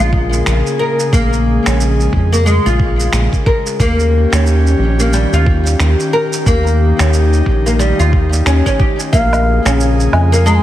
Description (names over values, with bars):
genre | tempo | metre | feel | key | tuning
organic downtempo | 90 BPM | 4/4 | swing 59% on 16ths | Bb minor pentatonic | A4 = 438 Hz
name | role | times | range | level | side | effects
airy breathy pad | sustained chords | 0.0-10.6 s | Db3 to Ab4 | -20 LUFS | left 1 dB | chorus, sidechain pumping
oud | arpeggios | 0.0-10.6 s | G3 to Bb4 | -17 LUFS | left 2 dB | digital delay
round analog bass | bass | 0.0-10.6 s | Bb1 to F2 | -13 LUFS | equal | sidechain pumping
bronze singing bowl | texture | 0.0-10.6 s | Bb4 | -31 LUFS | left 7 dB | none
electronic kick drum | drums | 0.1-9.3 s | none | -15 LUFS | equal | none
electronic shaker, finger snaps and woodblock | drums | 0.3-10.6 s | none | -22 LUFS | right 2 dB | none
hollow bansuri | melody | 9.1-10.6 s | F5 to Bb5 | -18 LUFS | left 1 dB | tape echo
room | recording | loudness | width
light reverb | heavily compressed radio sound, multiband compression | -11 LUFS | side -13 dB against mid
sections
0.0-10.6 A section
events
none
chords
0.0 Bbm7; 3.8 Eb7; 9.1 Bbm7